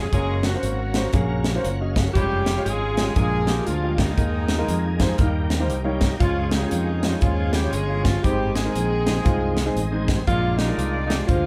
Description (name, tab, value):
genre	uptempo gospel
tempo	118 BPM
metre	4/4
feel	swing 62% on 8ths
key	Ab major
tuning	A4 = 440 Hz
part	bright alto saxophone	melody	0.0-11.5 s	Eb4 to Ab4	-31 LUFS	equal	none
part	warm horn section	melody	0.0-11.5 s	Eb3 to D5	-32 LUFS	equal	none
part	bright tonewheel organ	sustained chords	0.0-11.5 s	Eb3 to Bb5	-35 LUFS	equal	fast rotary speaker, overdrive, chorus vibrato
part	fingered electric bass	bass	0.0-11.5 s	F1 to F2	-27 LUFS	equal	none
part	warm upright piano	accompaniment	0.1-11.5 s	Ab2 to Bb5	-30 LUFS	equal	none
part	crisp fusion drum kit	drums	0.1-11.4 s	hi-hat, kick drum, snare drum	-26 LUFS	equal	none
room	light reverb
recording	band playing live in one room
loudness	-22 LUFS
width	mono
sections	0.0-11.5 A section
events	tonewheel organ fill 5.2-6.2, 9.3-10.3; upright piano fill 5.5-6.2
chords	0.1 Gb; 2.2 Db/F; 3.2 Bb7; 4.2 Ebsus4; 5.2 Eb; 6.2 Db; 8.2 Ab; 10.3 Bb7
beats	| 0.12 0.63 1.14 1.65 | 2.15 2.66 3.17 3.67 | 4.18 4.69 5.20 5.70 | 6.21 6.72 7.23 7.74 | 8.24 8.75 9.26 9.77 | 10.27 10.78 11.29